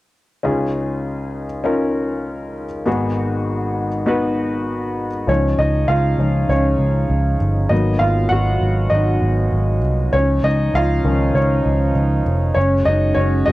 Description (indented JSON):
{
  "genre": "pop",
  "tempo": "99 BPM",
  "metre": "4/4",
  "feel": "straight",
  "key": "Db mixolydian",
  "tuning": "A4 = 436 Hz",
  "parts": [
    { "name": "warm concert grand piano", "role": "accompaniment", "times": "0.4-13.5 s", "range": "Ab1 to Gb5", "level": "-19 LUFS", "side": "left 1 dB", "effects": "none" },
    { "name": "warm brass ensemble", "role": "sustained chords", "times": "5.3-13.5 s", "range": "Cb3 to Gb4", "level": "-25 LUFS", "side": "right 4 dB", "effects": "none" },
    { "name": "vintage muted picked electric bass", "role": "bass", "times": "5.3-13.5 s", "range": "F1 to Db2", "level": "-17 LUFS", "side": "equal", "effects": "none" }
  ],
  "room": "little or no reverb",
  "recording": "dry, close 1970s-style studio recording",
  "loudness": "-16 LUFS",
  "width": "side -17 dB against mid",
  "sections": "0.4-5.3 A section; 5.3-13.5 B section",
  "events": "grand piano solo 5.3-13.5",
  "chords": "0.4 Dbadd9; 2.9 Abm7; 5.3 Dbadd9; 7.7 Abm7; 10.1 Dbadd9; 12.6 Gbsus2"
}